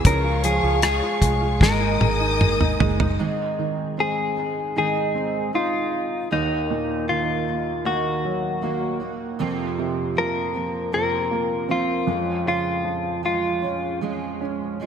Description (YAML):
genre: pop ballad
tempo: 78 BPM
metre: 4/4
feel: straight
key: unclear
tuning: A4 = 439 Hz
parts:
  - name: clear grand piano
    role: accompaniment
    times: 0.0-14.9 s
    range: Eb2 to F4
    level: -27 LUFS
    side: right 4 dB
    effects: analog chorus
  - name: warm studio string section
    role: sustained chords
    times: 0.0-3.2 s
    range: Ab4 to Eb6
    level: -28 LUFS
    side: left 3 dB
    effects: none
  - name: fingerpicked steel-string acoustic guitar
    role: arpeggios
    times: 0.0-14.9 s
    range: F2 to Ab4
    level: -29 LUFS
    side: right 4 dB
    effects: analog chorus, ping-pong delay
  - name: vintage muted fingered electric bass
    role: bass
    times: 0.0-3.2 s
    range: Gb1 to Db2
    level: -24 LUFS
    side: equal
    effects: none
  - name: direct-recorded clean electric guitar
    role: melody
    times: 0.1-14.0 s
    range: Eb4 to Bb4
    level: -24 LUFS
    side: left 3 dB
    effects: wide subtle chorus
  - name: damped 70s drum kit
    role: drums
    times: 0.1-3.2 s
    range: hi-hat, kick drum, rim click, snare drum, toms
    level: -20 LUFS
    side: equal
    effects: none
room: moderate lush hall reverb, RT60 2.2 s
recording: bright 1980s-style digital production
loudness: -20 LUFS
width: side -8 dB against mid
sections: 0.0-3.2 A section; 3.2-14.9 B section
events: drum fill 1.6-3.2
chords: 0.1 Db; 1.6 Absus2; 3.2 Ab; 6.3 Ebm; 9.4 Fsus4; 12.1 Db/F